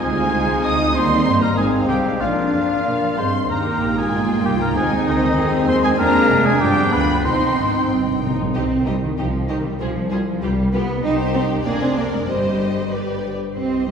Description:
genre	quick classical-period movement for symphony orchestra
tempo	96 BPM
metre	2/4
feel	rubato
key	C minor from 6.0 s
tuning	A4 = 438 Hz
part	rich studio violin section	melody	0.0-13.9 s	B4 to Ab5	-32 LUFS	left 4 dB	none
part	clear clarinet	second line	0.0-8.2 s	C4 to F4	-27 LUFS	left 1 dB	none
part	mellow hollow silver concert flute	second line	0.0-7.9 s	Eb5 to Eb6	-27 LUFS	left 2 dB	none
part	rich studio violin section	second line	0.0-13.9 s	G4 to Eb6	-28 LUFS	left 2 dB	none
part	warm oboe	second line	0.0-7.9 s	Eb4 to Eb5	-23 LUFS	equal	none
part	warm studio viola section	accompaniment	0.0-13.9 s	Ab3 to G4	-25 LUFS	right 2 dB	none
part	mellow French horn section	sustained chords	0.0-8.2 s	Eb3 to Eb4	-23 LUFS	left 1 dB	none
part	warm studio cello section	bass	0.0-13.9 s	Eb3 to Eb4	-23 LUFS	right 1 dB	none
part	warm studio double bass section	bass	0.0-13.9 s	F1 to Bb2	-24 LUFS	right 1 dB	none
part	dark bassoon	accompaniment	2.9-3.3 s	Ab3 to Bb3	-30 LUFS	left 1 dB	none
part	timpani	percussion	7.2-8.5 s	C3	-28 LUFS	right 1 dB	none
room	wet concert hall reverb, RT60 2.4 s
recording	heard from further back in the room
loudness	-16 LUFS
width	side -7 dB against mid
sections	0.0-8.6 A section; 8.6-13.9 B section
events	timpani fill 7.2-8.6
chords	0.0 Ab; 1.0 Eb; 1.6 Ab; 2.2 Bb; 3.5 Eb; 4.8 Ab; 6.0 Dm7b5/F; 6.6 G7; 7.2 Cm; 9.8 Fm/C; 10.4 G7/C; 11.0 Cm; 11.7 Ddim/F; 12.3 Cm/G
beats	0.35 | 0.96 1.57 | 2.21 2.86 | 3.51 4.14 | 4.76 5.38 | 5.99 6.61 | 7.25 7.90 | 8.55 9.18 | 9.81 10.42 | 11.04 11.66 | 12.28 12.92 | 13.56

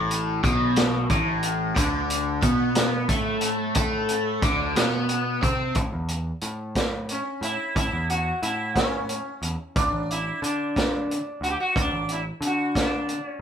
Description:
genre	psychedelic rock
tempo	60 BPM (dotted quarters)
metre	6/8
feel	straight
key	A major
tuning	A4 = 436 Hz
part	overdriven electric guitar	riff	0.0-5.8 s	A2 to C4	-24 LUFS	left 1 dB	phaser
part	overdriven picked electric bass	bass	0.0-13.2 s	A1 to D3	-29 LUFS	equal	none
part	vintage drum kit	drums	0.1-13.2 s	hi-hat, kick drum, snare drum	-26 LUFS	equal	none
part	sitar	melody	7.1-13.4 s	C#4 to G4	-27 LUFS	right 1 dB	none
room	moderate studio reverb, RT60 0.6 s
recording	band playing live in one room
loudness	-22 LUFS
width	side -8 dB against mid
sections	0.0-5.8 A section; 5.8-13.4 B section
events	none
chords	0.0 A5; 1.8 D5; 5.8 A; 9.8 D5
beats	0.77 | 1.76 2.76 | 3.76 4.76 | 5.76 6.76 | 7.76 8.76 | 9.76 10.76 | 11.76 12.76

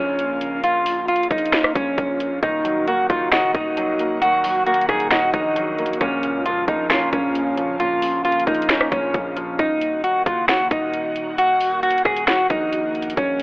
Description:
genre	hip hop, trap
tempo	134 BPM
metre	4/4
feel	half-time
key	Eb minor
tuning	A4 = 442 Hz
part	clean electric guitar	melody	0.0-13.4 s	Db4 to Ab4	-19 LUFS	equal	wide subtle chorus
part	airy breathy pad	sustained chords	0.0-13.4 s	Db3 to Gb4	-30 LUFS	equal	chorus, phaser
part	distorted 808-style bass	bass	0.0-13.4 s	Eb1 to Db2	-34 LUFS	equal	distortion
part	trap drum kit	drums	0.2-13.4 s	finger snaps, hi-hat, kick drum, rim click, snare drum	-21 LUFS	equal	overdrive
part	dark concert grand piano	accompaniment	2.4-9.6 s	Bb2 to Eb5	-25 LUFS	equal	none
room	light reverb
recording	telephone sound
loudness	-17 LUFS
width	side -24 dB against mid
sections	0.0-9.6 A section; 9.6-13.4 A section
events	none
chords	0.0 Bbm; 2.4 Ebm; 6.0 Bbm; 9.6 Ebm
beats	0.19 | 0.64 1.08 1.53 1.98 | 2.43 2.87 3.32 3.77 | 4.22 4.67 5.11 5.56 | 6.01 6.46 6.90 7.35 | 7.80 8.25 8.70 9.14 | 9.59 10.04 10.49 10.93 | 11.38 11.83 12.28 12.72 | 13.17

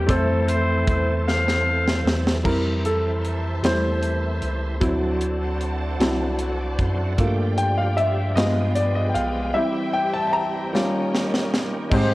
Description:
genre	slow gospel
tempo	51 BPM (dotted quarters)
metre	6/8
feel	straight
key	F major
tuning	A4 = 440 Hz
part	dark horn section	melody	0.0-2.4, 11.9-12.1 s	C4 to F5	-24 LUFS	left 1 dB	none
part	clear concert grand piano	accompaniment	0.0-12.1 s	Ab2 to Bb5	-24 LUFS	equal	none
part	bright tonewheel organ	sustained chords	0.0-12.1 s	Eb3 to D5	-31 LUFS	right 2 dB	slow rotary speaker, chorus vibrato
part	mellow tine electric piano	bass	0.0-12.1 s	B1 to Ab2	-24 LUFS	equal	medium stereo tremolo
part	crisp fusion drum kit	drums	0.1-12.1 s	crash cymbal, hi-hat, kick drum, snare drum	-24 LUFS	equal	none
part	warm studio string section	sustained chords	2.5-11.9 s	Ab3 to A5	-34 LUFS	equal	none
room	light reverb, small room ambience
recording	worn, warbling old tape, cassette tape, warbly pitch drift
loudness	-20 LUFS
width	side -18 dB against mid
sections	0.0-2.4 A section; 2.4-11.9 B section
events	drum fill 1.3-2.4, 10.7-11.9; grand piano solo 2.4-11.9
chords	0.1 Fmaj7; 4.8 D7; 7.2 Gm7; 8.4 G7b9; 9.6 C; 10.7 Eb7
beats	| 0.08 1.26 | 2.45 3.63 | 4.82 6.00 | 7.18 8.37 | 9.55 10.74 | 11.92

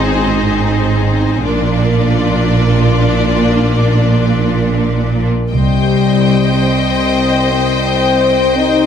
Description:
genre	cinematic, epic orchestral film score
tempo	free time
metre	none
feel	none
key	C minor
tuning	A4 = 441 Hz
part	rich symphonic violin section	second line	0.0-8.9 s	F4 to Eb5	-20 LUFS	left 5 dB	none
part	rich symphonic viola section	accompaniment	0.0-8.9 s	Bb3 to C5	-18 LUFS	equal	none
part	clear studio double bass section	bass	0.0-6.2 s	Ab1 to C2	-16 LUFS	right 2 dB	none
part	rich symphonic cello section	bass	0.0-8.9 s	C2 to Bb2	-16 LUFS	right 3 dB	none
part	rich studio violin section	melody	5.5-8.9 s	G5	-20 LUFS	left 4 dB	none
part	mellow French horn section	sustained chords	5.5-8.9 s	G3 to Eb4	-14 LUFS	left 6 dB	none
room	moderate scoring stage reverb, RT60 1.7 s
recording	none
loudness	-11 LUFS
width	side -8 dB against mid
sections	0.0-5.5 A section; 5.5-8.9 B section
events	build-up 0.0-5.5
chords	0.0 Ab; 1.4 Bb; 5.5 Cm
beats	free time

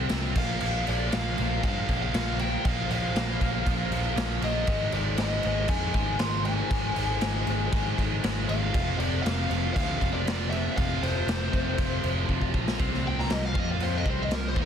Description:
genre	hard rock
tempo	118 BPM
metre	4/4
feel	straight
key	unclear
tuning	A4 = 440 Hz
part	biting lead guitar	melody	0.0-14.7 s	Bb4 to C6	-33 LUFS	left 1 dB	overdrive
part	crunchy overdriven guitar	riff	0.0-14.7 s	F2 to F4	-34 LUFS	left 13 dB	none
part	high-gain distorted guitar	riff	0.0-14.7 s	F2 to F4	-34 LUFS	right 14 dB	distortion
part	picked electric bass	bass	0.0-14.7 s	F1 to G2	-30 LUFS	equal	none
part	raw garage drum kit	drums	0.1-14.7 s	crash cymbal, kick drum, snare drum	-28 LUFS	equal	none
room	light reverb, small room ambience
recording	dense, heavily limited modern master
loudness	-24 LUFS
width	side -8 dB against mid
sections	0.0-12.8 A section; 12.8-14.7 B section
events	drum fill 12.3-12.8; lead electric guitar solo 12.8-14.7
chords	0.4 Bb5; 4.7 Ab5; 8.7 F5; 12.8 C5; 13.5 F5; 14.1 C5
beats	0.10 | 0.61 1.12 1.63 2.14 | 2.65 3.16 3.66 4.17 | 4.68 5.19 5.70 6.20 | 6.71 7.22 7.72 8.23 | 8.74 9.24 9.75 10.26 | 10.76 11.27 11.78 12.28 | 12.79 13.30 13.80 14.31

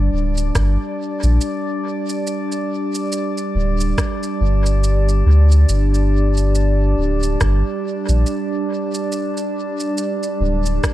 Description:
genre	ambient dub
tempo	70 BPM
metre	4/4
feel	swing 59% on 16ths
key	unclear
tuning	A4 = 439 Hz
part	warbly tape-like pad	sustained chords	0.0-10.9 s	G3 to D5	-22 LUFS	equal	chorus, built-in reverb
part	soft dub sub bass	bass	0.0-10.8 s	D1 to D2	-15 LUFS	equal	none
part	drifting glass-harmonics texture	texture	0.0-10.9 s	D4 to D5	-29 LUFS	equal	chorus, built-in reverb
part	electronic shaker and rim click	drums	0.4-10.9 s	none	-28 LUFS	right 1 dB	studio reverb, dub echo
part	electronic kick drum	drums	0.6-10.9 s	none	-21 LUFS	equal	studio reverb
room	digital ambience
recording	echo-heavy mix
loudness	-16 LUFS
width	side -14 dB against mid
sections	0.0-10.9 A section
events	none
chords	0.0 G5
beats	0.55 1.41 | 2.26 3.12 3.98 4.84 | 5.69 6.55 7.41 8.26 | 9.12 9.98 10.84

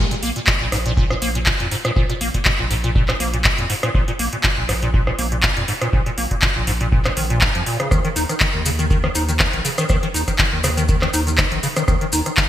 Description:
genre	acid house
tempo	121 BPM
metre	4/4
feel	swing 54% on 16ths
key	unclear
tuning	A4 = 440 Hz
part	acid bass, square	riff	0.0-12.4 s	Ab2 to Eb4	-22 LUFS	equal	lush chorus, digital delay
part	saturated sub bass	bass	0.0-12.2 s	Bb1 to F2	-24 LUFS	equal	sidechain pumping
part	booming analog drum machine	drums	0.1-12.5 s	handclaps, hi-hat, rim click	-21 LUFS	equal	gated reverb
part	electronic kick drum	drums	0.5-12.5 s	none	-20 LUFS	equal	none
part	maracas	percussion	7.9-12.5 s	none	-28 LUFS	left 3 dB	none
room	moderate lush hall reverb, RT60 1.7 s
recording	bright 1980s-style digital production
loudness	-16 LUFS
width	side -12 dB against mid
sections	0.0-12.5 A section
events	none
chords	0.0 N.C.; 7.9 Eb5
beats	0.47 0.97 1.47 | 1.96 2.46 2.95 3.45 | 3.95 4.44 4.94 5.43 | 5.93 6.42 6.92 7.42 | 7.91 8.41 8.90 9.40 | 9.90 10.39 10.89 11.38 | 11.88 12.38

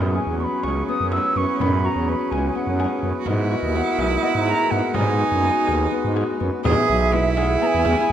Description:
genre	contemporary instrumental, chamber music in an uneven meter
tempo	249 BPM (eighths)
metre	7/8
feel	straight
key	unclear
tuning	A4 = 440 Hz
part	bright cello	second line	0.0-8.1 s	C#4 to G#4	-24 LUFS	right 7 dB	none
part	hand-pumped harmonium	sustained chords	0.0-8.1 s	E3 to D#5	-29 LUFS	right 1 dB	none
part	Celtic harp	arpeggios	0.0-8.1 s	B3 to G#4	-27 LUFS	left 8 dB	none
part	growling FM bass	bass	0.0-8.1 s	B1 to G#2	-24 LUFS	right 2 dB	none
part	mellow wooden flute	melody	0.1-8.1 s	D#5 to E6	-25 LUFS	equal	none
part	small celesta	texture	0.1-5.0 s	F#5 to D#6	-34 LUFS	left 4 dB	none
part	frame drum	percussion	0.6-8.1 s	none	-31 LUFS	left 2 dB	none
room	moderate recital hall reverb, RT60 1.8 s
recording	none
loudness	-18 LUFS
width	side -10 dB against mid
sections	0.0-6.6 A section; 6.6-8.1 B section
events	none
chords	0.0 F#9sus4; 3.3 Emaj9#11; 5.0 G#m7; 6.6 E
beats	0.15 0.39 0.64 0.88 1.12 1.36 | 1.60 1.84 2.08 2.32 2.56 2.80 3.04 | 3.27 3.51 3.75 3.99 4.23 4.47 4.71 | 4.95 5.19 5.43 5.67 5.92 6.16 6.40 | 6.65 6.89 7.13 7.38 7.62 7.86 8.10

